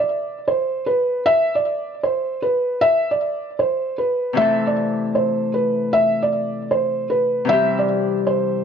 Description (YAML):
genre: hip hop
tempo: 154 BPM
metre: 4/4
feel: half-time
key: unclear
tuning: A4 = 440 Hz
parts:
  - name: felt-muted upright piano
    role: melody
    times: 0.0-8.6 s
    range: B4 to E5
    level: -18 LUFS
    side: right 1 dB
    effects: low-pass filter, ping-pong delay
  - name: Celtic harp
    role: accompaniment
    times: 4.3-8.6 s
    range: C3 to A4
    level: -22 LUFS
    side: left 4 dB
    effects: low-pass filter
room: moderate recital hall reverb, RT60 1.3 s, small room ambience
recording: none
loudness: -17 LUFS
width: side -7 dB against mid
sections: 0.0-8.6 A section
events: break 0.0-2.8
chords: 0.0 N.C.; 4.4 Amadd9; 7.5 C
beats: 0.09 0.47 0.86 | 1.25 1.64 2.03 2.42 | 2.81 3.20 3.59 3.98 | 4.37 4.76 5.15 5.54 | 5.93 6.32 6.71 7.10 | 7.49 7.88 8.27